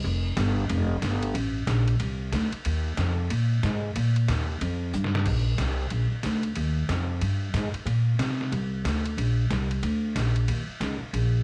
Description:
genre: country, western swing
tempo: 184 BPM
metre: 4/4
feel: swing 62% on 8ths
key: Bb mixolydian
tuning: A4 = 440 Hz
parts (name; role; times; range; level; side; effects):
- upright bass; bass; 0.0-11.4 s; F1 to C3; -27 LUFS; equal; none
- trip hop sampler-style drum kit; drums; 0.4-11.2 s; crash cymbal, hi-hat, kick drum, ride cymbal, snare drum; -36 LUFS; equal; none
room: digital ambience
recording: none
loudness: -27 LUFS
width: mono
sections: 0.0-5.3 A section; 5.3-11.4 A section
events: drum fill 4.9-5.3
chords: none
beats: | 0.04 0.37 0.70 1.02 | 1.35 1.67 2.00 2.33 | 2.65 2.98 3.30 3.63 | 3.96 4.28 4.61 4.93 | 5.26 5.59 5.91 6.24 | 6.57 6.89 7.22 7.54 | 7.87 8.20 8.52 8.85 | 9.18 9.50 9.83 10.15 | 10.48 10.81 11.13

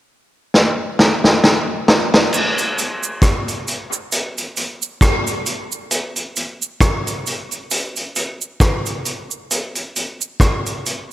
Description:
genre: reggae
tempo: 67 BPM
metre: 4/4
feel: swing 57% on 16ths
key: none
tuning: none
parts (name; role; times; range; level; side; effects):
- vintage drum kit; drums; 0.5-11.1 s; crash cymbal, hi-hat, kick drum, rim click, snare drum; -16 LUFS; equal; none
- cabasa; percussion; 2.3-11.1 s; none; -24 LUFS; right 7 dB; high-pass filter on perc
room: moderate echo chamber reverb, RT60 2.3 s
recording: none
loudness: -16 LUFS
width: side -14 dB against mid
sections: 0.0-2.3 A section; 2.3-11.1 B section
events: drum fill 0.5-2.3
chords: none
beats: 0.53 1.43 | 2.32 3.22 4.12 5.01 | 5.91 6.81 7.71 8.61 | 9.50 10.40

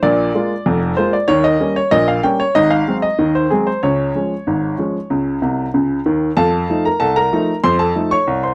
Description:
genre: ragtime piano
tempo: 95 BPM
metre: 2/4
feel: straight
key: unclear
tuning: A4 = 440 Hz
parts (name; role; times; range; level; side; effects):
- clear upright piano; solo; 0.0-8.5 s; F1 to Db6; -16 LUFS; equal; none
room: light reverb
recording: dry, close 1970s-style studio recording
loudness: -16 LUFS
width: mono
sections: 0.0-6.4 A section; 6.4-8.5 B section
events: upright piano fill 5.4-6.4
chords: 0.0 Bb7; 1.3 Eb7; 2.6 Ab7; 3.8 Db; 6.4 F7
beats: | 0.03 0.66 | 1.29 1.92 | 2.55 3.18 | 3.82 4.46 | 5.10 5.74 | 6.38 7.01 | 7.64 8.28

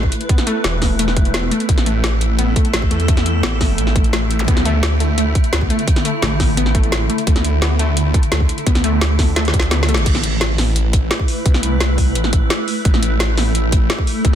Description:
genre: dark technical drum and bass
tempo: 172 BPM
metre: 4/4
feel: straight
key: unclear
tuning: A4 = 441 Hz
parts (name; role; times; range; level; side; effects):
- swarming drone; sustained chords; 0.0-14.3 s; D3 to B4; -23 LUFS; equal; built-in reverb, sidechain pumping
- snarling distorted saw bass; bass; 0.0-14.3 s; E1 to E2; -18 LUFS; equal; overdrive, sidechain pumping
- electronic kick drum; drums; 0.0-14.3 s; none; -16 LUFS; equal; none
- drum and bass drum kit; drums; 0.1-14.3 s; crash cymbal, hi-hat, snare drum; -21 LUFS; equal; none
- wide unison pluck; arpeggios; 0.3-10.0 s; A3 to B3; -24 LUFS; left 2 dB; sidechain pumping, ping-pong delay
- zap; sound effects; 4.4-4.5 s; none; -26 LUFS; equal; none
room: light reverb, digital ambience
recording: dense, heavily limited modern master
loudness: -14 LUFS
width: side -10 dB against mid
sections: 0.0-10.1 A section; 10.1-14.3 A section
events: drop 0.0-10.1, 10.1-14.3; drum fill 9.4-10.1; band accent 9.9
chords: 0.0 A5; 4.5 D5; 10.1 Am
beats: | 0.29 0.64 0.99 1.34 | 1.69 2.04 2.39 2.73 | 3.08 3.43 3.78 4.13 | 4.48 4.83 5.18 5.53 | 5.88 6.22 6.57 6.92 | 7.27 7.62 7.97 8.32 | 8.67 9.01 9.36 9.71 | 10.06 10.41 10.76 11.11 | 11.46 11.80 12.15 12.50 | 12.85 13.20 13.55 13.90 | 14.25

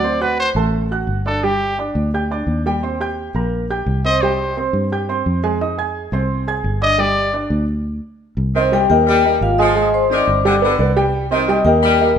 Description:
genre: latin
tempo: 173 BPM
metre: 4/4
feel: straight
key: C minor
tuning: A4 = 444 Hz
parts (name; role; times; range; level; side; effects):
- bright trumpet; melody; 0.0-1.8, 4.1-4.6, 6.8-7.3 s; G4 to Eb5; -19 LUFS; left 1 dB; none
- clear upright piano; accompaniment; 0.0-12.2 s; G3 to Ab6; -19 LUFS; right 3 dB; none
- fingered electric bass; bass; 0.0-12.2 s; G1 to G2; -21 LUFS; equal; none
- clear saxophone section; second line; 8.5-12.1 s; D3 to G3; -21 LUFS; left 2 dB; none
- vibraphone with medium mallets; melody; 8.7-12.2 s; F4 to Eb6; -16 LUFS; left 6 dB; none
room: wet large studio reverb, RT60 1.2 s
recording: minimal, uncompressed stereo recording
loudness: -15 LUFS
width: side -8 dB against mid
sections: 0.0-8.4 A section; 8.4-12.2 B section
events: trumpet solo 0.0-8.4; stop 7.7-8.4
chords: 0.0 D7; 1.4 G5; 2.8 Eb6; 4.2 C5; 5.6 Fm7; 7.0 G5; 8.4 Cm; 9.1 Eb; 9.8 Ab; 10.4 G; 11.1 Cm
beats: | 0.03 0.38 0.73 1.08 | 1.43 1.78 2.13 2.48 | 2.83 3.17 3.52 3.87 | 4.22 4.57 4.91 5.26 | 5.61 5.95 6.30 6.65 | 6.99 7.34 7.68 8.03 | 8.38 8.72 9.07 9.41 | 9.76 10.10 10.45 10.79 | 11.13 11.48 11.82 12.17

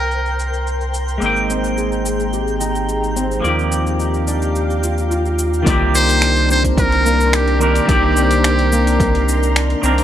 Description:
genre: sunset chillout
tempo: 108 BPM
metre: 4/4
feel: straight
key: C minor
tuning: A4 = 440 Hz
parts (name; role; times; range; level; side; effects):
- trumpet with metal mute; melody; 0.0-0.9, 6.0-9.8 s; G4 to C5; -19 LUFS; equal; tape echo
- clean electric guitar; accompaniment; 0.0-10.0 s; Eb3 to G5; -20 LUFS; equal; auto-pan
- soft string machine; sustained chords; 0.0-10.0 s; Ab3 to D6; -24 LUFS; equal; ensemble chorus
- round analog bass; bass; 0.0-10.0 s; Ab1 to Eb2; -19 LUFS; equal; none
- twinkling granular texture; texture; 0.0-5.7 s; G5; -31 LUFS; right 2 dB; built-in reverb
- deep house drum kit; drums; 0.1-10.0 s; cabasa, finger snaps, hi-hat; -24 LUFS; equal; overdrive, low-pass filter on perc, low-pass filter on hats, low-pass filter on snare
- concert harp; arpeggios; 1.5-10.0 s; Bb3 to Ab4; -22 LUFS; equal; analog delay
- electronic kick drum; drums; 5.7-9.1 s; none; -18 LUFS; equal; overdrive
room: little or no reverb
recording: dry, gritty hardware recording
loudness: -14 LUFS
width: side -11 dB against mid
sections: 0.0-5.7 A section; 5.7-10.0 B section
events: none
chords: 0.0 Cm9; 1.2 Abmaj7; 3.4 Ebmaj9; 5.7 Cm9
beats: 0.11 0.67 | 1.22 1.78 2.33 2.89 | 3.44 4.00 4.55 5.11 | 5.67 6.22 6.78 7.33 | 7.89 8.44 9.00 9.55

